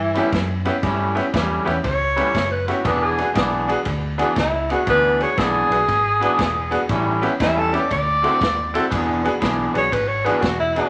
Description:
electric blues shuffle; 119 BPM; 4/4; swing 66% on 8ths; A4 = 440 Hz
breathy tenor saxophone; melody; 0.0-10.9 s; E3 to D5; -22 LUFS; equal
vintage muted fingered electric bass; bass; 0.0-10.8 s; E1 to G2; -30 LUFS; equal
electric guitar through a small old amp; riff; 0.1-10.8 s; A2 to G#4; -26 LUFS; equal
bright grand piano; accompaniment; 0.2-10.9 s; B3 to B4; -27 LUFS; equal
vintage drum kit; drums; 0.2-10.8 s; kick drum, ride cymbal, snare drum; -29 LUFS; equal
wet large studio reverb, RT60 1.0 s; vinyl crackle; -20 LUFS; mono
0.0-10.9 A section
tenor saxophone solo 0.0-10.9
0.0 A7; 2.8 E7; 6.9 A7; 7.9 D7; 8.9 E7
0.32 | 0.82 1.33 1.83 2.34 | 2.85 3.35 3.86 4.36 | 4.87 5.37 5.88 6.38 | 6.89 7.39 7.90 8.40 | 8.91 9.42 9.92 10.43

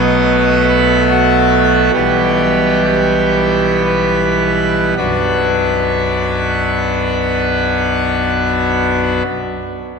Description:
classical, chorale-style piece for pipe organ; 51-78 BPM; 3/4; rubato; B minor; A4 = 440 Hz
pipe organ, full organ; solo; 0.0-9.2 s; B1 to D#5; -12 LUFS; equal
wet church reverb, RT60 3.7 s; minimal, uncompressed stereo recording; -12 LUFS; side -5 dB against mid
0.0-5.0 A section; 5.0-8.5 B section
slowing down 0.0-5.0
0.0 B7; 1.9 Em/B; 5.0 Bm
0.28 1.09 | 1.93 2.85 3.85 | 4.97 6.13 7.29

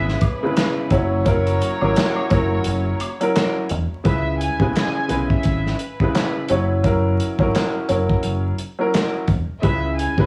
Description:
hip hop, boom-bap hip-hop; 86 BPM; 4/4; swing 58% on 16ths; C# dorian; A4 = 440 Hz
warm studio violin section; melody; 0.0-10.3 s; B4 to G#5; -30 LUFS; equal; high-pass filter, low-pass filter, cassette tape, analog delay
warm upright piano; accompaniment; 0.0-10.3 s; C#3 to C#5; -24 LUFS; equal; cassette tape, high-pass filter, low-pass filter
warm studio string section; sustained chords; 0.0-4.0 s; A#2 to E4; -37 LUFS; equal
warm horn section; stabs; 0.0-3.7 s; E4 to A#5; -32 LUFS; equal; high-pass filter, low-pass filter, cassette tape, analog delay
deep dub fingered electric bass; bass; 0.0-10.3 s; E1 to C#2; -24 LUFS; equal; tube saturation
warm soul drum kit; drums; 0.1-10.3 s; handclaps, hi-hat, kick drum, snare drum; -24 LUFS; equal; cassette tape
tube shaker and woodblock; percussion; 0.2-3.9 s; -35 LUFS; equal
light reverb; home recording on cassette, vinyl crackle, studio reverb; -20 LUFS; mono
0.0-4.1 A section; 4.1-10.3 B section
break 2.7-4.1
0.0 C#m7; 0.9 F#7; 4.1 C#m7; 6.5 F#7; 9.6 C#m7
0.56 | 1.26 1.96 2.66 3.35 | 4.05 4.75 5.45 6.14 | 6.84 7.54 8.24 8.94 | 9.63

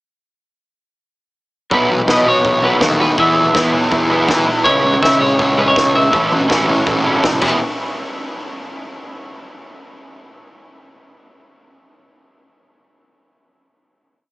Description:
indie rock; 163 BPM; 4/4; straight; E major; A4 = 437 Hz
clean electric guitar; melody; 1.7-7.0 s; A4 to E5; -18 LUFS; equal; analog delay
fuzz guitar; riff; 1.7-7.6 s; F#3 to A4; -19 LUFS; right 2 dB; distortion, analog chorus, analog delay
raw garage guitar; riff; 1.7-7.6 s; A2 to G#4; -23 LUFS; left 2 dB; overdrive, wide subtle chorus
fuzz picked electric bass; bass; 1.7-7.6 s; E1 to E3; -19 LUFS; equal; overdrive
compact cocktail drum kit; drums; 1.7-7.5 s; crash cymbal, kick drum, snare drum, toms; -22 LUFS; equal
wet huge ambient reverb, RT60 8.1 s; dreamy mix soaked in reverb, small speaker sound; -12 LUFS; side -20 dB against mid
1.7-7.6 pre-chorus; 7.6-9.1 final hit
1.7 Bsus4; 3.2 Eadd9; 4.7 C#m; 6.1 A6; 7.4 E; 7.6 N.C.
| 1.71 2.08 2.45 2.82 | 3.19 3.56 3.92 4.29 | 4.66 5.03 5.40 5.76 | 6.13 6.50 6.87 7.24

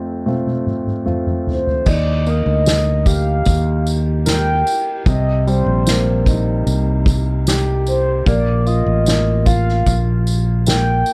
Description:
pop ballad; 75 BPM; 4/4; straight; A4 = 439 Hz
clear concert grand piano; accompaniment; 0.0-11.1 s; F2 to Bb4; -25 LUFS; equal
soft-mallet drum kit; drums; 0.3-11.1 s; crash cymbal, kick drum, ride cymbal, snare drum, toms; -22 LUFS; equal
mellow horn-like synth lead; melody; 1.5-11.1 s; C5 to G5; -24 LUFS; equal; chorus
fretless electric bass; bass; 1.9-11.0 s; A1 to Eb2; -19 LUFS; equal
tambourine; percussion; 1.9-11.1 s; -33 LUFS; equal
little or no reverb; -17 LUFS; mono
0.0-1.9 A section; 1.9-11.1 B section
drum fill 0.3-1.9
0.0 F; 1.9 Ebmaj7; 5.1 Cm7; 8.3 Bb5
0.26 1.06 | 1.86 2.66 3.46 4.26 | 5.06 5.86 6.66 7.46 | 8.26 9.06 9.86 10.66

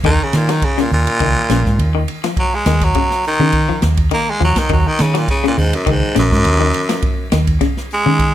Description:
afrobeat; 103 BPM; 4/4; swing 54% on 16ths; Eb minor; A4 = 440 Hz
twangy electric guitar; arpeggios; 0.0-8.3 s; Db3 to Gb3; -21 LUFS; left 6 dB
vintage muted fingered electric bass; bass; 0.0-8.3 s; Bb1 to Eb3; -16 LUFS; right 1 dB
jazz brush drum kit; drums; 0.0-8.3 s; hi-hat, kick drum, ride cymbal, snare drum; -20 LUFS; equal
raspy baritone saxophone; melody; 0.1-8.3 s; Gb2 to Bb3; -17 LUFS; equal
light reverb; -13 LUFS; side -12 dB against mid
0.0-8.3 A section
baritone saxophone solo 0.0-8.3
0.0 Ebm7
| 0.04 0.62 1.20 1.79 | 2.37 2.95 3.54 4.12 | 4.70 5.28 5.86 6.45 | 7.03 7.61 8.19

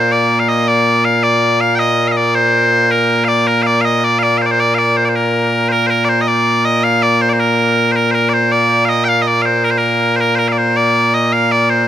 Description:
scottish traditional, Scottish pipe music; 107 BPM (dotted quarters); 6/8; straight; Bb major; A4 = 440 Hz
loud bright bagpipes; solo; 0.0-11.9 s; Bb2 to G5; -11 LUFS; equal
light reverb; minimal, uncompressed stereo recording; -11 LUFS; side -11 dB against mid
0.0-5.7 A section; 5.7-11.9 B section
| 0.11 0.67 | 1.23 1.79 | 2.35 2.91 | 3.48 4.04 | 4.60 5.16 | 5.72 6.28 | 6.84 7.40 | 7.96 8.52 | 9.08 9.64 | 10.20 10.77 | 11.32

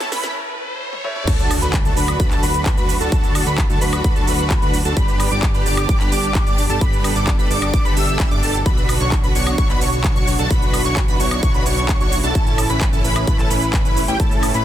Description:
EDM, festival progressive house; 130 BPM; 4/4; straight; D major; A4 = 441 Hz
bright baby grand piano; accompaniment; 0.0-1.3 s; A3 to C#5; -33 LUFS; left 1 dB; sidechain pumping, dub echo
rich studio string section; sustained chords; 0.0-14.6 s; A2 to A4; -28 LUFS; right 1 dB; sidechain pumping
wide unison lead; arpeggios; 0.0-14.6 s; G5 to E6; -24 LUFS; equal; ensemble chorus, sidechain pumping, dub echo
supersaw chords; riff; 0.0-14.6 s; C#4 to E5; -24 LUFS; right 1 dB; sidechain pumping, dub echo
fat analog bass; bass; 0.0-14.6 s; G1 to G2; -24 LUFS; equal; sidechain pumping, high-pass filter
big-room dance drum kit; drums; 0.0-14.6 s; crash cymbal, handclaps, hi-hat, shaker, snare drum, toms, woodblock; -26 LUFS; right 1 dB
riser and impact; sound effects; 0.0-3.1 s; -28 LUFS; equal
electronic kick drum; drums; 1.3-14.3 s; -18 LUFS; equal
digital ambience; dense, heavily limited modern master, high-pass filter; -15 LUFS; side -12 dB against mid
0.0-1.3 A section; 1.3-14.6 B section
build-up 0.0-1.3; drum fill 0.0-0.4, 0.9-1.3; riser 0.0-1.3; break 0.4-1.3; drop 1.3-14.6; impact 1.3-3.1
0.0 A; 1.3 D; 5.0 G; 8.7 Bm; 12.4 A
0.35 0.81 | 1.27 1.74 2.20 2.66 | 3.12 3.58 4.04 4.50 | 4.97 5.43 5.89 6.35 | 6.81 7.28 7.74 8.20 | 8.66 9.12 9.58 10.04 | 10.51 10.97 11.43 11.89 | 12.35 12.81 13.28 13.74 | 14.20

